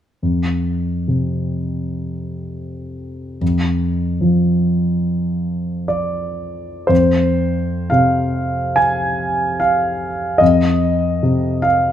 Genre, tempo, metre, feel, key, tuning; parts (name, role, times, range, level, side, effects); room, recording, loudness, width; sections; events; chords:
classical, impressionist solo piano; 57-80 BPM; 4/4; rubato; F minor; A4 = 440 Hz
warm concert grand piano; solo; 0.2-11.9 s; F2 to Ab5; -16 LUFS; equal
light reverb; close, detailed microphones; -15 LUFS; side -10 dB against mid
0.2-6.9 A section; 6.9-11.9 B section
0.2 F5; 3.4 N.C.; 6.9 Fm